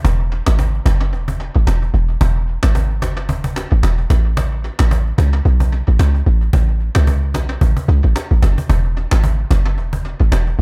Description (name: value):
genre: afrobeats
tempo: 111 BPM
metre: 4/4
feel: swing 58% on 16ths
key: E major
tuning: A4 = 440 Hz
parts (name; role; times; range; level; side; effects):
- deep log drum bass; bass; 0.0-10.6 s; E1 to C#2; -16 LUFS; equal; none
- cajon; drums; 0.0-10.6 s; none; -25 LUFS; equal; tape echo
room: little or no reverb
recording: echo-heavy mix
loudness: -16 LUFS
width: mono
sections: 0.0-10.6 A section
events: none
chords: none